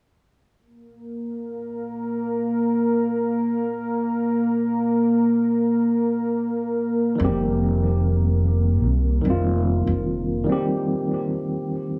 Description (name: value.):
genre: trip hop.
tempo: free time.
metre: none.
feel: none.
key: unclear.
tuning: A4 = 440 Hz.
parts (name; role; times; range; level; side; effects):
deep dark ambient pad; sustained chords; 1.1-10.5 s; Bb3 to Bb4; -25 LUFS; equal; chorus, built-in reverb.
tine electric piano; accompaniment; 7.2-12.0 s; Eb3 to G4; -26 LUFS; equal; harmonic tremolo, vintage 12-bit sampler grit, tape echo.
upright bass; bass; 7.2-10.4 s; F1 to C2; -23 LUFS; equal; tube saturation.
room: moderate plate reverb, RT60 3.4 s.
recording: echo-heavy mix.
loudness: -22 LUFS.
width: mono.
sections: 0.6-12.0 A section.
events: break 10.5-12.0.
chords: 0.6 N.C.; 7.2 Cm/F.